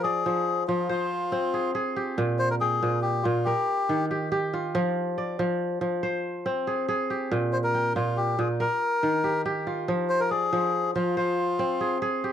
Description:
west african traditional; 94 BPM (dotted quarters); 12/8; straight; F dorian; A4 = 444 Hz
melodica; melody; 0.0-12.0 s; F4 to C5; -27 LUFS; left 3 dB; tape echo
kora; arpeggios; 0.0-12.3 s; Bb2 to G5; -26 LUFS; right 1 dB
moderate booth ambience, RT60 0.3 s; dry, close 1970s-style studio recording; -24 LUFS; side -9 dB against mid
0.0-12.3 A section
0.0 Fm; 2.2 Abmaj9/Bb; 3.5 Eb; 4.7 Fm; 7.3 Abmaj9/Bb; 8.6 Eb; 9.9 Fm

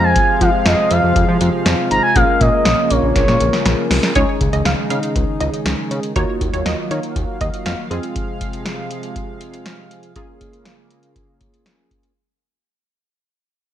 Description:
synth-pop; 120 BPM; 4/4; straight; A4 = 440 Hz
expressive synth lead; melody; 0.0-3.9 s; Db5 to Bb5; -16 LUFS; equal; chorus, slapback echo
funky polysynth comp; accompaniment; 0.0-12.1 s; Ab3 to C5; -23 LUFS; left 1 dB; chorus
chorused pulse-width pad; sustained chords; 0.0-12.1 s; C3 to F5; -25 LUFS; right 1 dB
fat analog bass; bass; 0.0-8.0 s; Ab1 to F3; -19 LUFS; equal
electro analog drum machine; drums; 0.2-12.1 s; hi-hat, kick drum, snare drum; -20 LUFS; equal; gated reverb
wide unison pluck; second line; 4.2-8.0 s; Db5 to F5; -24 LUFS; right 2 dB; slapback echo
light reverb; -14 LUFS; side -11 dB against mid
0.0-4.2 A section; 4.2-12.2 B section
drum fill 3.2-4.2; fade-out 4.2-12.2
0.0 Fm; 2.2 Bbm7; 4.2 Dbsus2; 6.2 Ebmadd9; 7.9 Fm; 10.2 Bbm7

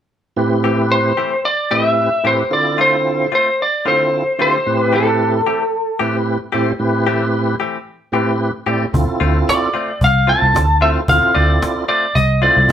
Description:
straight-eighth soul blues; 112 BPM; 4/4; straight; A minor; A4 = 443 Hz
tonewheel organ; accompaniment; 0.4-12.7 s; A2 to D5; -18 LUFS; right 2 dB; overdrive, chorus vibrato, slow rotary speaker
direct-recorded clean electric guitar; stabs; 0.6-12.6 s; E3 to G4; -22 LUFS; left 6 dB
lightly driven lead guitar; melody; 0.9-6.0, 9.5-12.7 s; A4 to A5; -15 LUFS; equal
vintage muted fingered electric bass; bass; 8.9-12.7 s; C2 to D2; -16 LUFS; equal
cajon; drums; 8.9-12.7 s; -23 LUFS; left 1 dB
moderate studio reverb, RT60 0.7 s; band playing live in one room; -13 LUFS; side -9 dB against mid
0.4-12.7 A section
0.4 Am7; 2.5 Dm7; 4.7 Am7; 8.9 Dm7

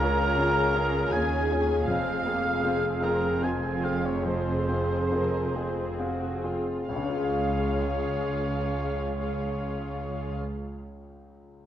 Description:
cinematic, emotional film score for orchestra; 65-82 BPM; 3/4; rubato; Db major; A4 = 443 Hz
muted symphonic violin section; melody; 0.0-10.4 s; F4 to F5; -36 LUFS; left 2 dB
muted symphonic violin section; second line; 0.0-10.4 s; F4 to Bb5; -36 LUFS; left 2 dB
warm cor anglais; second line; 0.0-10.4 s; Bb4 to Ab5; -32 LUFS; right 2 dB
bright grand piano; accompaniment; 0.0-11.7 s; Db2 to F5; -32 LUFS; left 3 dB
muted symphonic viola section; accompaniment; 0.0-10.4 s; Bb3 to Ab4; -32 LUFS; equal
muted symphonic cello section; bass; 0.0-10.4 s; Db2 to F2; -34 LUFS; right 2 dB
muted symphonic double bass section; bass; 0.0-10.4 s; F1 to Eb2; -33 LUFS; right 2 dB
wet scoring stage reverb, RT60 2.1 s; worn, warbling old tape, cassette tape, warbly pitch drift; -25 LUFS; side -11 dB against mid
0.0-6.9 A section; 6.9-9.6 B section
slowing down 0.7-6.9
0.0 Db; 1.9 Fm; 6.9 Db

